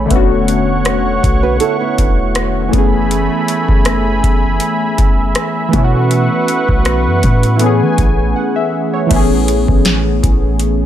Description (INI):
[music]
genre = contemporary R&B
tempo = 80 BPM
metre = 4/4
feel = swing 54% on 16ths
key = A major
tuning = A4 = 440 Hz
[part]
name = warm analog keys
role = accompaniment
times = 0.0-10.9 s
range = D3 to F#5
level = -16 LUFS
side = left 1 dB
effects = chorus
[part]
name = warm analog pad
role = sustained chords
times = 0.0-9.1 s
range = A3 to C#6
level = -18 LUFS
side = right 1 dB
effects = chorus
[part]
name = clean 808-style bass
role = bass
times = 0.0-10.9 s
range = E1 to E3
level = -16 LUFS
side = equal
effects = none
[part]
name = booming analog drum machine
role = drums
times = 0.1-10.8 s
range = crash cymbal, hi-hat, kick drum, rim click, snare drum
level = -15 LUFS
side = equal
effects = none
[part]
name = nylon-string guitar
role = arpeggios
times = 1.4-2.7 s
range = B3 to B4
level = -18 LUFS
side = right 8 dB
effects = digital delay
[sound]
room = digital ambience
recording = none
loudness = -11 LUFS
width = side -11 dB against mid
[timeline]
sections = 0.0-9.1 A section; 9.1-10.9 B section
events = break 8.4-9.1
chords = 0.1 E13sus4; 2.7 F#m11; 5.7 B9sus4; 7.6 Amaj9